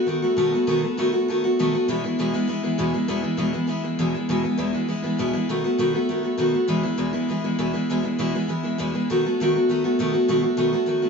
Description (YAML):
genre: rock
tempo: 200 BPM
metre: 4/4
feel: straight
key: E major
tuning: A4 = 438 Hz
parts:
  - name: picked steel-string acoustic guitar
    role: solo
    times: 0.0-11.1 s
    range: E2 to F#4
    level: -20 LUFS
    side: equal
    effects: tape echo
room: moderate studio reverb, RT60 0.7 s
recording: band playing live in one room, nothing above 7.8 kHz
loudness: -20 LUFS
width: side -5 dB against mid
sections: 0.0-3.1 A section; 3.1-11.1 A section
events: none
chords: 0.0 B7; 1.9 E; 5.5 B7; 6.7 E; 9.1 B7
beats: 0.09 0.39 | 0.69 0.99 1.29 1.59 | 1.89 2.19 2.49 2.79 | 3.09 3.39 3.69 3.99 | 4.29 4.59 4.89 5.19 | 5.49 5.79 6.09 6.39 | 6.69 6.99 7.29 7.59 | 7.89 8.19 8.49 8.79 | 9.09 9.39 9.69 9.99 | 10.29 10.59 10.89